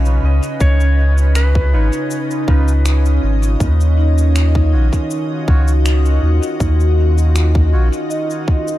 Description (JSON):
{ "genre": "ambient dub", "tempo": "80 BPM", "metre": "4/4", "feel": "straight", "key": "Eb minor", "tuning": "A4 = 441 Hz", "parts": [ { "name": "clean lap steel guitar", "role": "melody", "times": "0.0-3.2 s", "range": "Cb5 to Eb5", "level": "-27 LUFS", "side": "equal", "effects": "dub echo" }, { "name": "soft additive organ-like pad", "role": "sustained chords", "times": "0.0-8.8 s", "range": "Db3 to Eb5", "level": "-22 LUFS", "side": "right 1 dB", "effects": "ensemble chorus, built-in reverb" }, { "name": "vibraphone with medium mallets", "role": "arpeggios", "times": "0.0-8.8 s", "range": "Db4 to Eb5", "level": "-26 LUFS", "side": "left 1 dB", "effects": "dub echo" }, { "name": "warm sub bass", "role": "bass", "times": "0.0-7.9 s", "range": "Ab1 to Eb2", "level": "-12 LUFS", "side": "equal", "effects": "none" }, { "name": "electronic cabasa and finger snaps", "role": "drums", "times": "0.1-8.8 s", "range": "none", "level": "-29 LUFS", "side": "left 1 dB", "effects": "overdrive, dub echo" }, { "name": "electronic kick drum", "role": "drums", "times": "0.6-8.6 s", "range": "none", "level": "-16 LUFS", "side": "equal", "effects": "overdrive" }, { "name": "melodica", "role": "stabs", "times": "1.7-7.9 s", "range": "Eb4 to Db5", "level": "-34 LUFS", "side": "right 2 dB", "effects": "dub echo" } ], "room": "light reverb", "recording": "none", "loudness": "-12 LUFS", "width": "side -15 dB against mid", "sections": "0.0-8.8 A section", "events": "none", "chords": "0.0 Db9; 3.6 Ebm9" }